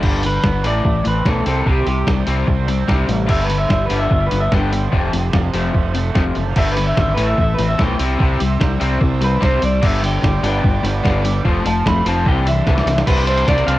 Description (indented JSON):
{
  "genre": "indie rock",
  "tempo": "147 BPM",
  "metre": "4/4",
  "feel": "straight",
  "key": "G mixolydian",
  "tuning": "A4 = 440 Hz",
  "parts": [
    { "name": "crunchy overdriven guitar", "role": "riff", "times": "0.0-13.8 s", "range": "F2 to D4", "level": "-22 LUFS", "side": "left 5 dB", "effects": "cassette tape" },
    { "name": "raw garage guitar", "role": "riff", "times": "0.0-13.8 s", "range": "F2 to D4", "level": "-25 LUFS", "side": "right 7 dB", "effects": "overdrive, analog chorus, cassette tape, analog delay" },
    { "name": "growling fingered electric bass", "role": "bass", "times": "0.0-13.8 s", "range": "F1 to C2", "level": "-19 LUFS", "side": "equal", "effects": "overdrive" },
    { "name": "lo-fi sampler-style drum kit", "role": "drums", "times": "0.0-13.8 s", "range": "crash cymbal, hi-hat, kick drum, snare drum", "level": "-20 LUFS", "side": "equal", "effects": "cassette tape" },
    { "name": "electric guitar through a small old amp", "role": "melody", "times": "0.3-13.8 s", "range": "G4 to B5", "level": "-22 LUFS", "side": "equal", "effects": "cassette tape" },
    { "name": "overdriven combo organ", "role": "sustained chords", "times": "6.6-13.8 s", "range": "G3 to C6", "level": "-30 LUFS", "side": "right 1 dB", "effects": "cassette tape" }
  ],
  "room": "light reverb, digital ambience",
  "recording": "home recording on cassette",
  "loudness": "-14 LUFS",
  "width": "side -16 dB against mid",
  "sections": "0.0-13.1 A section",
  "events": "clean electric guitar solo 0.0-13.1; drum fill 12.7-13.1",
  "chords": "0.0 G; 0.6 Am; 1.5 C5; 3.3 G; 4.9 F; 6.6 G; 7.2 Am; 8.0 C; 9.8 G; 11.4 F; 12.3 Cadd9; 13.1 Csus2",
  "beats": "| 0.03 0.43 0.84 1.25 | 1.66 2.07 2.48 2.88 | 3.29 3.70 4.11 4.52 | 4.93 5.34 5.75 6.16 | 6.56 6.97 7.38 7.79 | 8.20 8.61 9.01 9.42 | 9.83 10.23 10.64 11.04 | 11.45 11.86 12.26 12.66 | 13.07 13.47"
}